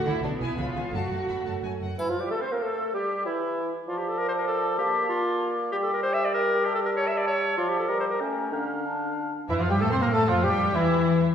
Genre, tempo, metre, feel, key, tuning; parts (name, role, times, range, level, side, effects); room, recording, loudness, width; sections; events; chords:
classical, dramatic, fast romantic movement for symphony orchestra; 192 BPM; 3/4; straight; D minor; A4 = 445 Hz
rich studio violin section; melody; 0.0-2.0, 9.5-11.2 s; E4 to B5; -37 LUFS; left 3 dB
rich symphonic violin section; second line; 0.0-1.6, 9.5-11.2 s; D4 to C6; -32 LUFS; right 1 dB
clear symphonic viola section; accompaniment; 0.0-1.8, 9.5-11.2 s; E3 to C4; -31 LUFS; right 2 dB
clear chamber double bass section; bass; 0.1-1.9, 9.5-11.2 s; F#1 to C3; -31 LUFS; equal
rich symphonic cello section; bass; 0.1-1.9, 9.5-11.2 s; F#2 to C4; -31 LUFS; equal
bright clarinet; second line; 2.0-11.2 s; C#4 to E5; -28 LUFS; left 1 dB
mellow hollow concert flute; second line; 2.0-11.2 s; E4 to C6; -34 LUFS; left 2 dB
warm oboe; second line; 2.0-11.2 s; E4 to G5; -31 LUFS; right 1 dB
mellow bassoon; accompaniment; 2.0-11.2 s; D3 to C4; -30 LUFS; right 2 dB
triangle; percussion; 2.0-2.6 s; -50 LUFS; left 1 dB
dark French horn section; sustained chords; 9.5-11.2 s; E3 to C4; -28 LUFS; left 6 dB
wet scoring stage reverb, RT60 1.6 s; heard from further back in the room; -24 LUFS; side -8 dB against mid
0.0-2.0 A section; 2.0-9.5 B section; 9.5-11.3 B section
0.2 G#m/B; 0.6 C#7; 0.9 F#m; 2.0 N.C.; 3.9 Dm/F; 4.8 Bbmaj7; 5.7 Gm; 7.6 Dm/F; 7.9 Gm; 8.2 A7; 8.5 Dm; 9.5 Fmaj9; 10.4 Em